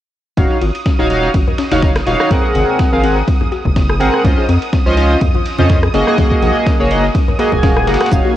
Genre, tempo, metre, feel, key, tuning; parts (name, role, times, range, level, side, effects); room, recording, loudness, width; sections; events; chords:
deep house; 124 BPM; 4/4; swing 55% on 16ths; Eb dorian; A4 = 443 Hz
soft round pluck; arpeggios; 0.4-8.3 s; C4 to Bb4; -24 LUFS; left 8 dB; chorus, sidechain pumping, cassette tape, analog delay
chorused polysynth; stabs; 0.4-8.3 s; Bb3 to Ab5; -15 LUFS; right 1 dB; sidechain pumping, cassette tape, analog delay
round analog bass; bass; 0.4-8.2 s; Eb1 to F2; -17 LUFS; equal; sidechain pumping
dusty soul sampler-style drum kit; drums; 0.4-8.4 s; ride cymbal, snare drum; -31 LUFS; right 1 dB; high-pass filter on cymbals, cassette tape, high-pass filter on snare
electronic kick drum; drums; 0.4-8.2 s; -15 LUFS; equal; overdrive, cassette tape
congas; percussion; 0.4-8.2 s; -23 LUFS; left 4 dB
analog string pad; texture; 0.4-8.4 s; Eb6 to Ab6; -27 LUFS; right 2 dB; ensemble chorus, sidechain pumping, cassette tape
electronic rim click and cabasa; drums; 2.0-8.2 s; -23 LUFS; equal; overdrive, cassette tape
soft string machine; sustained chords; 8.2-8.4 s; Bb3 to Db5; -20 LUFS; left 1 dB; ensemble chorus, sidechain pumping, cassette tape
light reverb; home recording on cassette; -11 LUFS; side -12 dB against mid
0.4-8.4 A section
0.4 Ebm9; 2.3 Ab9; 4.2 Dbmaj9; 5.9 Gb69